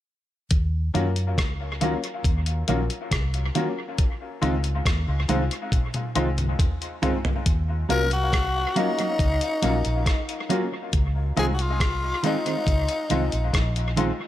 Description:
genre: lovers rock reggae.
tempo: 69 BPM.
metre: 4/4.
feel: straight.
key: unclear.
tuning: A4 = 444 Hz.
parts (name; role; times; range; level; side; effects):
vintage muted fingered electric bass; bass; 0.5-14.1 s; Bb1 to Gb2; -25 LUFS; equal; none.
crisp 8-bit digital drum machine; drums; 0.5-14.2 s; hi-hat, kick drum, rim click, toms; -26 LUFS; equal; dub echo.
bright grand piano; accompaniment; 0.9-14.1 s; Gb3 to F4; -30 LUFS; left 5 dB; dub echo.
mellow electric guitar; stabs; 0.9-14.2 s; Eb3 to Gb4; -28 LUFS; right 5 dB; none.
growling tenor saxophone; melody; 7.9-13.9 s; Eb4 to Bb4; -27 LUFS; left 2 dB; dub echo.
room: light reverb.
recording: none.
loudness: -22 LUFS.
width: side -13 dB against mid.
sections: 0.5-7.5 A section; 7.5-14.3 B section.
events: drum fill 5.7-7.5.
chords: 0.5 Ebm7; 4.0 Dbmaj9; 7.5 Ebm7; 10.9 Dbmaj9.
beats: | 0.51 1.38 2.25 3.12 | 3.98 4.85 5.72 6.59 | 7.46 8.33 9.20 10.06 | 10.93 11.80 12.67 13.54.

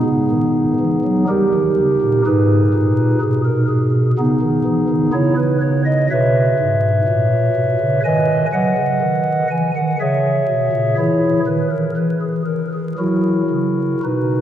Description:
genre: classical, chorale-style piece for pipe organ.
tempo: 62 BPM.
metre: 3/4.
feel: rubato.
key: unclear.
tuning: A4 = 440 Hz.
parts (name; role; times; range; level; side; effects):
pipe organ, stopped flute; solo; 0.0-14.4 s; G#2 to G#5; -14 LUFS; equal; none.
room: wet cathedral reverb, RT60 4.4 s.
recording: heard from further back in the room, vinyl crackle.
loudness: -14 LUFS.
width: side -11 dB against mid.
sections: 0.0-14.4 A section.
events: none.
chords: 0.0 G#m; 1.3 D#7; 2.2 G#m; 8.0 B; 10.0 C#m; 11.0 C#m13/D#; 13.0 F#7.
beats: 0.31 1.28 | 2.25 3.21 4.17 | 5.14 6.11 7.08 | 8.04 9.01 9.99 | 10.97 11.95 12.97 | 14.03.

